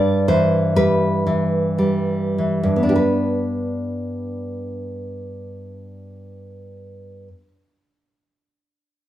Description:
romantic piece for solo classical guitar; 46-65 BPM; 3/4; rubato; G major; A4 = 439 Hz
nylon-string guitar; solo; 0.0-7.5 s; G2 to D5; -19 LUFS; equal
moderate large studio reverb, RT60 0.8 s; band playing live in one room; -17 LUFS; side -12 dB against mid
0.0-2.9 A section; 2.9-6.0 B section
slowing down 0.0-2.9
0.0 G6; 2.9 G

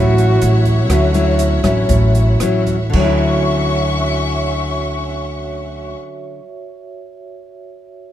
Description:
bossa nova; 111-128 BPM; 4/4; straight; D major; A4 = 441 Hz
breathy alto saxophone; melody; 0.0-0.9 s; F#4; -19 LUFS; right 3 dB
nylon-string guitar; accompaniment; 0.0-6.5 s; A2 to E4; -20 LUFS; left 4 dB
vibraphone with medium mallets; accompaniment; 0.0-8.1 s; F#4 to E5; -24 LUFS; right 4 dB
warm symphonic string section; sustained chords; 0.0-5.9 s; C#4 to C#6; -24 LUFS; left 3 dB
upright bass; bass; 0.0-5.9 s; A1 to D2; -16 LUFS; right 1 dB
open jazz drum kit; drums; 0.2-3.1 s; crash cymbal, hi-hat, kick drum, rim click; -22 LUFS; right 2 dB
little or no reverb; -13 LUFS; side -12 dB against mid
0.0-2.9 A section; 2.9-7.3 B section
slowing down 0.0-2.9; alto saxophone solo 0.0-2.9
0.0 Dmaj9

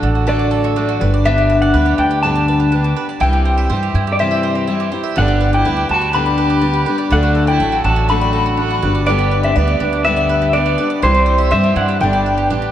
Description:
folk; 123 BPM; 4/4; straight; G major; A4 = 439 Hz
electric guitar through a small old amp; melody; 0.0-12.5 s; C5 to B5; -18 LUFS; left 1 dB; tremolo, tape echo
picked steel-string acoustic guitar; accompaniment; 0.0-12.7 s; G2 to G4; -20 LUFS; left 4 dB
mandolin; arpeggios; 0.0-12.7 s; D4 to E5; -24 LUFS; right 6 dB; tape echo
upright bass; bass; 0.0-12.7 s; G1 to G2; -17 LUFS; equal
rich fiddle; second line; 4.2-12.5 s; G3 to G4; -24 LUFS; right 4 dB
moderate concert hall reverb, RT60 2.4 s; worn, warbling old tape, cassette tape, warbly pitch drift; -13 LUFS; side -11 dB against mid
0.0-12.7 A section
0.0 D; 1.0 G; 3.2 C; 5.2 G; 7.1 D; 8.8 G; 11.0 C; 12.0 G

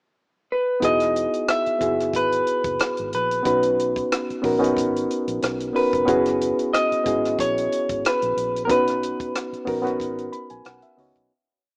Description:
lush 1970s-style soul; 92 BPM; 4/4; swing 54% on 16ths; B major; A4 = 444 Hz
electric guitar through a small old amp; melody; 0.5-10.6 s; A#4 to E5; -25 LUFS; equal
reed electric piano; accompaniment; 0.8-11.3 s; B3 to B5; -26 LUFS; equal; spring reverb
vintage muted fingered electric bass; bass; 0.8-11.3 s; E1 to C#2; -40 LUFS; equal
compact cocktail drum kit; drums; 0.8-11.3 s; hi-hat, kick drum, rim click; -31 LUFS; equal
light reverb, studio ambience; rough home demo mix, small speaker sound; -22 LUFS; mono
0.0-0.8 pickup bar; 0.8-11.3 A section
fade-out 8.7-11.3; reed electric piano fill 10.0-11.3
0.0 N.C.; 0.8 Emaj7; 3.5 Bmaj7; 6.1 F#7sus4; 8.7 Bmaj7

